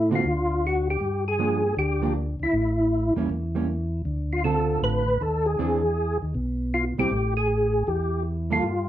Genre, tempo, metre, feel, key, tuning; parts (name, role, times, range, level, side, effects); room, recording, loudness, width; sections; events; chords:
jazz; 157 BPM; 4/4; swing 65% on 8ths; A4 = 440 Hz
percussive tonewheel organ; melody; 0.0-8.9 s; E4 to B4; -24 LUFS; equal; slow rotary speaker, chorus vibrato
tonewheel organ; bass; 0.0-8.9 s; A1 to A2; -26 LUFS; equal; slow rotary speaker
hollow-body jazz guitar; accompaniment; 0.1-8.6 s; D3 to A4; -27 LUFS; right 4 dB
wet club reverb, RT60 0.5 s; heard from further back in the room; -22 LUFS; side -12 dB against mid
0.0-8.9 A section
0.2 Dmadd11; 1.0 Gm7; 2.5 A7b9; 4.1 Dm7; 5.6 E7b13; 7.1 A5